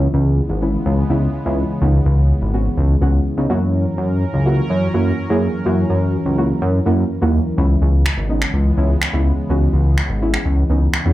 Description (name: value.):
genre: dance-pop.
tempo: 125 BPM.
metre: 4/4.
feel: straight.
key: C# dorian.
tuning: A4 = 440 Hz.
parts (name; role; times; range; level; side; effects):
deep mellow chord stab; accompaniment; 0.0-11.1 s; A#3 to G#4; -22 LUFS; right 1 dB; chorus, slapback echo.
sweeping resonant pad; sustained chords; 0.0-11.1 s; C#3 to A#4; -24 LUFS; left 1 dB; chorus.
chorused synth bass; bass; 0.0-11.1 s; G#1 to F#2; -16 LUFS; equal; none.
electronic finger snaps; drums; 8.1-11.0 s; none; -21 LUFS; right 1 dB; slapback echo.
room: light reverb.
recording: live gig heard through the venue's PA, club reverb.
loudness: -15 LUFS.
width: side -15 dB against mid.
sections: 0.0-11.1 A section.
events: none.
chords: 0.0 C#m7; 3.5 F#7; 7.6 C#m7.